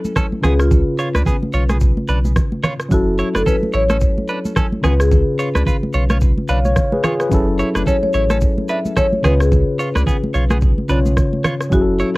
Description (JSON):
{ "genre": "afrobeats", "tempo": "109 BPM", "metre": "4/4", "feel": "swing 58% on 16ths", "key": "unclear", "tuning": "A4 = 439 Hz", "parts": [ { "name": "marimba with medium mallets", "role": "melody", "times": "0.0-12.1 s", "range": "E#4 to E5", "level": "-21 LUFS", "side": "left 1 dB", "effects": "cassette tape, tape echo" }, { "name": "tine electric piano", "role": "accompaniment", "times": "0.0-12.2 s", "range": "C#3 to E#5", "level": "-21 LUFS", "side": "left 1 dB", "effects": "medium stereo tremolo, cassette tape" }, { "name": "afro-pop drum kit", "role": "drums", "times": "0.0-12.1 s", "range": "kick drum, rim click, shaker", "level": "-18 LUFS", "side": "equal", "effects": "none" }, { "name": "congas", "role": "percussion", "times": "0.0-12.2 s", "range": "none", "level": "-24 LUFS", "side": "right 2 dB", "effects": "none" }, { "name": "direct-recorded clean electric guitar", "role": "riff", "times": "0.2-12.1 s", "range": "B3 to C#5", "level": "-24 LUFS", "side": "right 2 dB", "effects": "cassette tape, tape echo" }, { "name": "warm sub bass", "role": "bass", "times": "0.4-12.0 s", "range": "F#1 to C#2", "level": "-17 LUFS", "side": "equal", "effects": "none" } ], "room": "light reverb", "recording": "home recording on cassette", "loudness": "-14 LUFS", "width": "side -21 dB against mid", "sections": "0.0-12.2 A section", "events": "none", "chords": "0.4 C#7; 2.9 F#m7; 4.8 C#7; 7.3 F#m7; 9.2 C#7" }